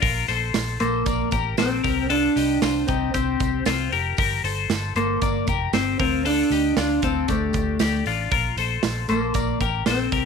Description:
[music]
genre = jangly indie pop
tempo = 116 BPM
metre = 4/4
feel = straight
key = Bb major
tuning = A4 = 438 Hz
[part]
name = twelve-string electric guitar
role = arpeggios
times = 0.0-10.3 s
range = C4 to D5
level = -25 LUFS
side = left 14 dB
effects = phaser, slapback echo
[part]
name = vintage muted fingered electric bass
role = bass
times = 0.0-10.3 s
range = F1 to D2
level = -28 LUFS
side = right 1 dB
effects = none
[part]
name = big rock drum kit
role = drums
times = 0.0-10.2 s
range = hi-hat, kick drum, snare drum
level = -27 LUFS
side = right 4 dB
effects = none
[part]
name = tambourine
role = percussion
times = 0.0-10.2 s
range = none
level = -40 LUFS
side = right 15 dB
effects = none
[part]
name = mellow electric guitar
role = melody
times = 0.8-10.3 s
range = A3 to D4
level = -23 LUFS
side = equal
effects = slapback echo
[sound]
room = small room ambience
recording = 1960s-style stereo with parts hard left and right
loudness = -20 LUFS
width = side -6 dB against mid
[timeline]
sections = 0.0-10.3 A section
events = none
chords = 0.0 Bbmaj7; 1.8 C7sus4; 4.2 Gm; 6.0 Dm; 8.3 Bbmaj7

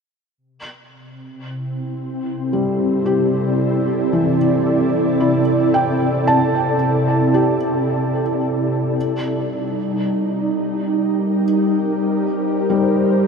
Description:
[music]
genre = ambient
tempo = 56 BPM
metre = 4/4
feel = straight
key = C major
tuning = A4 = 440 Hz
[part]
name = ethereal airy pad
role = sustained chords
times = 1.5-13.3 s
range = C3 to D5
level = -18 LUFS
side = equal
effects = ensemble chorus, built-in reverb
[part]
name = felt-muted upright piano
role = arpeggios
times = 2.5-13.3 s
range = E3 to A5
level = -21 LUFS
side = equal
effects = diffuse ambient delay
[sound]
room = wet huge ambient reverb, RT60 7.5 s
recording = none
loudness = -16 LUFS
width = side -5 dB against mid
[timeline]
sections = 0.4-13.3 A section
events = none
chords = 0.4 C69; 9.0 F9sus4 (rootless)

